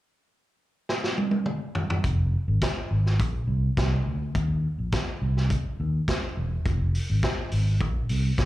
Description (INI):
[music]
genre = disco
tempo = 104 BPM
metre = 4/4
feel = straight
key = F dorian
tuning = A4 = 439 Hz
[part]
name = vintage drum kit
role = drums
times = 0.9-8.5 s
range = hi-hat, kick drum, snare drum, toms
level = -27 LUFS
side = equal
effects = none
[part]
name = fingered electric bass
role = bass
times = 2.0-8.5 s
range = E1 to Eb2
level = -24 LUFS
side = equal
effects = none
[sound]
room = little or no reverb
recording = live gig heard through the venue's PA, club reverb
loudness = -24 LUFS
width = side -16 dB against mid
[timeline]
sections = 0.0-2.0 A section; 2.0-8.5 B section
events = drum fill 0.9-2.0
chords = none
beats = 0.31 0.89 1.46 | 2.04 2.62 3.20 3.77 | 4.35 4.93 5.50 6.08 | 6.66 7.23 7.81 8.38